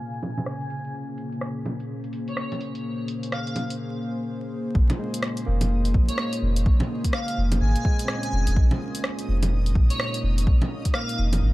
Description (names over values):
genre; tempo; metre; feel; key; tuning
future garage; 126 BPM; 4/4; swing 62% on 16ths; Bb minor; A4 = 440 Hz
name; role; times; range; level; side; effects
airy dreamy lead; melody; 0.0-11.2 s; Db5 to Ab5; -34 LUFS; equal; chorus, tape echo
barky tine electric piano; accompaniment; 0.0-11.5 s; Db3 to Db4; -35 LUFS; right 2 dB; sidechain pumping, tape echo
warbly tape-like pad; sustained chords; 0.0-11.5 s; Bb2 to C5; -31 LUFS; left 1 dB; chorus, built-in reverb, sidechain pumping
deep house drum kit; drums; 0.1-11.4 s; bongos, hi-hat, rim click; -30 LUFS; equal; none
backwards swelling texture; texture; 5.7-11.5 s; Eb4 to Eb5; -42 LUFS; equal; built-in reverb
warm sub bass; bass; 4.8-11.5 s; F1 to Bb1; -21 LUFS; equal; sidechain pumping
electronic kick drum; drums; 4.8-10.9 s; none; -22 LUFS; equal; none
room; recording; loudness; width
light reverb; vinyl crackle, low-pass filter; -22 LUFS; side -18 dB against mid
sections
0.0-4.8 A section; 4.8-11.5 B section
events
filter sweep 0.0-4.8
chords
0.0 Bbm7